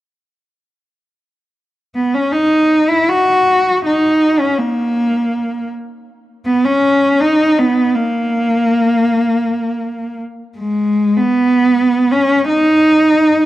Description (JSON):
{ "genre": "folk", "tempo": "80 BPM", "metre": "3/4", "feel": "straight", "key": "unclear", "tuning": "A4 = 441 Hz", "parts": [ { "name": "warm cello", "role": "melody", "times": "2.0-13.5 s", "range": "G#3 to F#4", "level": "-12 LUFS", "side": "equal", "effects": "none" } ], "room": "moderate plate reverb, RT60 3.0 s", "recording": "dark, warm production", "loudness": "-12 LUFS", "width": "side -15 dB against mid", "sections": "1.6-10.6 A section; 10.6-13.5 B section", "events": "none", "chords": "none" }